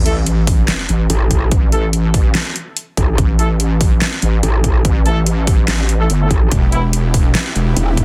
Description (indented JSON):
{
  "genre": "heavy wobble dubstep",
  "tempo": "144 BPM",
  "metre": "4/4",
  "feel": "swing 53% on 16ths, half-time",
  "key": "unclear",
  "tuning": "A4 = 440 Hz",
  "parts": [
    { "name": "wobble bass", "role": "bass", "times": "0.0-7.7 s", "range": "E1 to A1", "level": "-18 LUFS", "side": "equal", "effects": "chorus, overdrive" },
    { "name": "sub drop", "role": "sound effects", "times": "0.0-1.5 s", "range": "none", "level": "-26 LUFS", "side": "equal", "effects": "none" },
    { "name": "warm brass ensemble", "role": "stabs", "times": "0.1-6.8 s", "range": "E3 to A4", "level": "-26 LUFS", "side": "equal", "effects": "tape echo" },
    { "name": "dubstep drum kit", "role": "drums", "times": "0.1-8.0 s", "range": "handclaps, hi-hat, snare drum", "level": "-22 LUFS", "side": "equal", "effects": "none" },
    { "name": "electronic kick drum", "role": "drums", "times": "0.5-8.0 s", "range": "none", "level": "-17 LUFS", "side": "equal", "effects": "none" },
    { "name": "metallic wobble bass", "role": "bass", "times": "1.1-8.0 s", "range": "E1 to A1", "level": "-17 LUFS", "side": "equal", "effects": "chorus, overdrive" },
    { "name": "supersaw chords", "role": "sustained chords", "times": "6.5-8.0 s", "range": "B3 to G4", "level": "-30 LUFS", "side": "equal", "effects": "sidechain pumping" }
  ],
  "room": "little or no reverb",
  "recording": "dense, heavily limited modern master",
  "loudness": "-15 LUFS",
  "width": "mono",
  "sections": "0.0-8.0 A section",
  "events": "impact 0.0-1.5",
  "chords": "0.0 A5; 6.5 Em",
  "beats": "0.27 0.68 1.10 | 1.51 1.93 2.35 2.77 | 3.18 3.60 4.01 4.43 | 4.85 5.26 5.68 6.10 | 6.51 6.93 7.35 7.76"
}